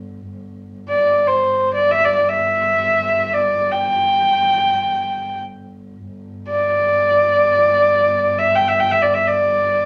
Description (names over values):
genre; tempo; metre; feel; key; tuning
mongolian traditional, Mongolian folk; free time; none; none; unclear; A4 = 438 Hz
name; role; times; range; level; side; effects
dark double bass; drone; 0.0-9.9 s; G1; -34 LUFS; equal; none
rich horsehead fiddle; melody; 0.9-9.9 s; C5 to G5; -17 LUFS; equal; none
room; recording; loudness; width
wet studio reverb, RT60 0.6 s; none; -17 LUFS; mono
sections
0.3-9.9 A section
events
none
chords
none